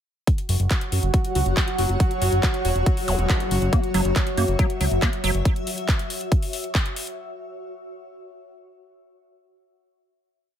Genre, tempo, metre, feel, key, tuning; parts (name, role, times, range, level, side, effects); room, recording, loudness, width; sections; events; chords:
psychedelic trance; 139 BPM; 4/4; straight; A4 = 440 Hz
pulsing gated texture; sustained chords; 0.5-5.5 s; F#3 to F#4; -28 LUFS; right 1 dB; chorus, built-in reverb, vintage 12-bit sampler grit, sidechain pumping
big-room dance drum kit; drums; 0.3-7.2 s; handclaps, hi-hat; -29 LUFS; left 1 dB
electronic kick drum; drums; 0.3-6.8 s; -21 LUFS; equal
granular cloud pad; texture; 1.0-7.2 s; F#4 to F#5; -30 LUFS; left 1 dB; built-in reverb, sidechain pumping
fat analog bass; bass; 0.5-5.4 s; E1 to F#2; -22 LUFS; equal
zap; sound effects; 3.1-3.2 s; -33 LUFS; left 1 dB
liquid acid bass; riff; 3.7-5.3 s; F#3 to A#3; -28 LUFS; right 3 dB; chorus, auto-pan, sidechain pumping, digital delay
digital ambience; -20 LUFS; side -10 dB against mid
0.3-7.2 groove
0.3 F#5